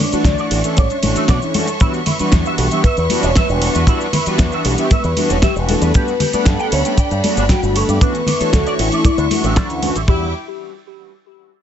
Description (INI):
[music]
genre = nu-disco, nu disco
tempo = 116 BPM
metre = 4/4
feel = straight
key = E dorian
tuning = A4 = 436 Hz
[part]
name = soft octave-layered synth lead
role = melody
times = 0.0-10.3 s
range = E4 to D5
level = -22 LUFS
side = left 1 dB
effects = chorus, phaser, ping-pong delay
[part]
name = warm symphonic violin section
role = sustained chords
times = 0.0-10.3 s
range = E4 to D6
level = -26 LUFS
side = left 1 dB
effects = sidechain pumping
[part]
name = electric guitar with an envelope filter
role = riff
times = 0.0-10.3 s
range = D3 to G5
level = -26 LUFS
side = right 2 dB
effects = ensemble chorus
[part]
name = congas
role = percussion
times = 0.0-9.9 s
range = none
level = -23 LUFS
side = left 2 dB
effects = none
[part]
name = mellow synth brass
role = accompaniment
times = 0.1-10.3 s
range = E3 to F#5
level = -21 LUFS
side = equal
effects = chorus, sidechain pumping, ping-pong delay
[part]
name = fingered electric bass with an envelope filter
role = bass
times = 0.1-10.3 s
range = E1 to B2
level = -19 LUFS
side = equal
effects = none
[part]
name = pop drum kit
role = drums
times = 0.1-10.1 s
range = hi-hat, ride cymbal, shaker, snare drum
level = -23 LUFS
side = equal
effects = overdrive
[part]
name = kick drum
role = drums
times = 0.2-10.2 s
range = none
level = -14 LUFS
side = equal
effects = none
[sound]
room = small room ambience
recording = nothing above 7.9 kHz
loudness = -13 LUFS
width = side -9 dB against mid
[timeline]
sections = 0.0-10.1 A section; 10.1-11.6 B section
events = drop 0.0-10.1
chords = 0.0 Dmaj9; 1.8 Em7; 5.9 Gmaj9; 8.0 Dmaj9; 10.1 Em7